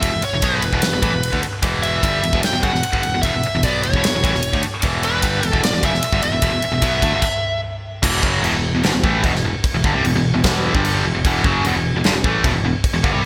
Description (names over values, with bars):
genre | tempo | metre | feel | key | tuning
hard rock | 150 BPM | 4/4 | straight | E dorian | A4 = 443 Hz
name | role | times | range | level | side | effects
bluesy overdriven lead guitar | melody | 0.0-7.6 s | B4 to G5 | -24 LUFS | equal | distortion, digital delay
tight distorted guitar | riff | 0.0-13.3 s | E2 to B3 | -23 LUFS | equal | distortion
picked electric bass | bass | 0.0-13.2 s | E1 to D2 | -26 LUFS | equal | none
big rock drum kit | drums | 0.0-13.1 s | crash cymbal, kick drum, ride cymbal, snare drum | -23 LUFS | equal | gated reverb
room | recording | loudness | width
moderate plate reverb, RT60 2.0 s | bright 1980s-style digital production | -18 LUFS | mono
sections
0.0-8.0 A section; 8.0-13.3 B section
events
stop 7.2-8.0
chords
0.0 Em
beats
| 0.03 0.43 0.83 1.23 | 1.63 2.03 2.43 2.83 | 3.23 3.63 4.03 4.43 | 4.83 5.23 5.64 6.04 | 6.44 6.84 7.24 7.64 | 8.04 8.44 8.84 9.24 | 9.64 10.04 10.44 10.84 | 11.24 11.64 12.04 12.44 | 12.84 13.24